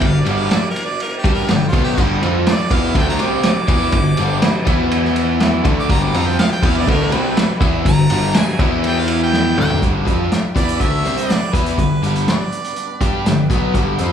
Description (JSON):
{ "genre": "classic rock", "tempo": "122 BPM", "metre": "4/4", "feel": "straight", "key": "G mixolydian", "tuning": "A4 = 440 Hz", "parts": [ { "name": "clear harmonica", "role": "melody", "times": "0.0-13.2 s", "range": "F4 to D6", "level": "-24 LUFS", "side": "right 1 dB", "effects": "analog delay" }, { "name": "tonewheel organ", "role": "sustained chords", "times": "0.0-14.1 s", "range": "G3 to D5", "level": "-33 LUFS", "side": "right 1 dB", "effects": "none" }, { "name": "overdriven electric guitar", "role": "riff", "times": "0.0-14.1 s", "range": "G2 to G4", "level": "-20 LUFS", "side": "left 6 dB", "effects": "none" }, { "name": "tight distorted guitar", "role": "riff", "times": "0.0-14.1 s", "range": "G2 to G4", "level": "-23 LUFS", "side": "right 6 dB", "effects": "distortion" }, { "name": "picked electric bass", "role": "bass", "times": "0.0-14.1 s", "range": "G1 to G2", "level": "-23 LUFS", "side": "right 1 dB", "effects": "none" }, { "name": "vintage drum kit", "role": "drums", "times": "0.0-14.1 s", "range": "crash cymbal, hi-hat, kick drum, ride cymbal, snare drum, toms", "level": "-18 LUFS", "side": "equal", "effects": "none" }, { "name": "crunchy overdriven guitar", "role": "riff", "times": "2.0-9.8 s", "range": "G2 to F4", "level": "-25 LUFS", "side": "right 2 dB", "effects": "none" } ], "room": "moderate large studio reverb, RT60 1.4 s", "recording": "band playing live in one room, studio reverb", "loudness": "-14 LUFS", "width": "side -8 dB against mid", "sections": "0.0-9.8 A section; 9.8-14.1 B section", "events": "harmonica solo 0.0-9.8; drum fill 9.3-9.8", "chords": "0.0 G; 4.7 E5; 5.7 G; 8.6 E5; 9.6 G5; 9.8 G", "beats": "| 0.02 0.51 1.00 1.49 | 1.98 2.47 2.96 3.45 | 3.94 4.43 4.92 5.41 | 5.90 6.39 6.88 7.37 | 7.86 8.35 8.84 9.33 | 9.82 10.31 10.80 11.29 | 11.78 12.27 12.77 13.26 | 13.75" }